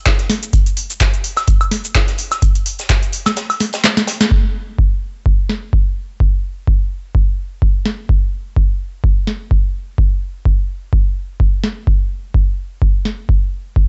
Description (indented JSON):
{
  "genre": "house",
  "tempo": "127 BPM",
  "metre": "4/4",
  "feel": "swing 55% on 16ths",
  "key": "none",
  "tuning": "none",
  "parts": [
    { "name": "booming analog drum machine", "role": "drums", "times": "0.1-13.2 s", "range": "cabasa, handclaps, hi-hat, snare drum, woodblock", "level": "-20 LUFS", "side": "equal", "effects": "none" },
    { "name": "electronic kick drum", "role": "drums", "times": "0.1-13.9 s", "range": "none", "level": "-16 LUFS", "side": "equal", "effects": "none" },
    { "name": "tight funk drum kit", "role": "drums", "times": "0.1-4.3 s", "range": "hi-hat, snare drum", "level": "-31 LUFS", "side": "equal", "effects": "high-pass filter on hats, high-pass filter on snare, high-pass filter on room" }
  ],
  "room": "studio reverb",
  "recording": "nothing above 8.0 kHz",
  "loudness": "-17 LUFS",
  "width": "mono",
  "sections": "0.0-4.3 A section; 4.3-13.9 B section",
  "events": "drop 0.0-4.3; kick drops out 3.4-4.3; drum fill 3.6-4.3; band accent 4.2",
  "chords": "none",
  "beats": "0.06 | 0.53 1.01 1.48 1.95 | 2.42 2.90 3.37 3.84 | 4.31 4.79 5.26 5.73 | 6.20 6.67 7.15 7.62 | 8.09 8.56 9.04 9.51 | 9.98 10.46 10.93 11.40 | 11.87 12.34 12.82 13.29 | 13.76"
}